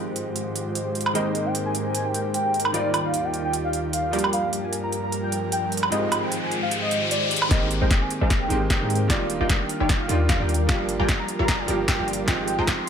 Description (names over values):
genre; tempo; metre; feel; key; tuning
future bass; 151 BPM; 4/4; swing 55% on 16ths, half-time; unclear; A4 = 440 Hz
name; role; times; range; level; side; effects
clear concert grand piano; accompaniment; 0.0-12.9 s; Ab2 to D5; -30 LUFS; right 2 dB; sidechain pumping, ping-pong delay
airy breathy pad; sustained chords; 0.0-12.9 s; Eb2 to C5; -32 LUFS; left 1 dB; chorus, sidechain pumping
supersaw stab; riff; 0.0-12.7 s; Eb3 to G5; -29 LUFS; right 1 dB; sidechain pumping, low-pass filter
big-room dance drum kit; drums; 0.2-12.8 s; hi-hat, snare drum, woodblock; -26 LUFS; right 1 dB; overdrive, high-pass filter on hats, high-pass filter on cymbals, high-pass filter on perc, high-pass filter on snare, high-pass filter on room
warm velvety synth lead; melody; 1.2-12.9 s; D5 to C6; -29 LUFS; equal; chorus, cassette tape, sidechain pumping, ping-pong delay
riser; sound effects; 5.6-7.5 s; none; -29 LUFS; left 3 dB; none
warm 808-style bass; bass; 7.5-12.7 s; Eb1 to Ab2; -26 LUFS; left 1 dB; sidechain pumping
electronic kick drum; drums; 7.5-12.8 s; none; -23 LUFS; equal; none
room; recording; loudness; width
light reverb; none; -21 LUFS; side -8 dB against mid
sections
0.0-7.5 A section; 7.5-12.9 B section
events
filter sweep on analog synth pad 0.0-7.5; riser 5.6-7.5; build-up 7.5-12.9; drum fill 7.5-12.9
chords
0.0 Fm9/Ab; 1.2 Abmaj9; 2.7 Ebmaj9; 4.1 Gm7; 5.9 Fm9/Ab; 7.5 Abmaj9; 9.1 Ebmaj9; 10.5 Gm7; 12.3 Fm9/Ab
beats
0.36 0.75 | 1.15 1.55 1.95 2.34 | 2.74 3.14 3.54 3.93 | 4.33 4.73 5.12 5.52 | 5.92 6.32 6.71 7.11 | 7.51 7.91 8.30 8.70 | 9.10 9.49 9.89 10.29 | 10.69 11.09 11.48 11.88 | 12.28 12.67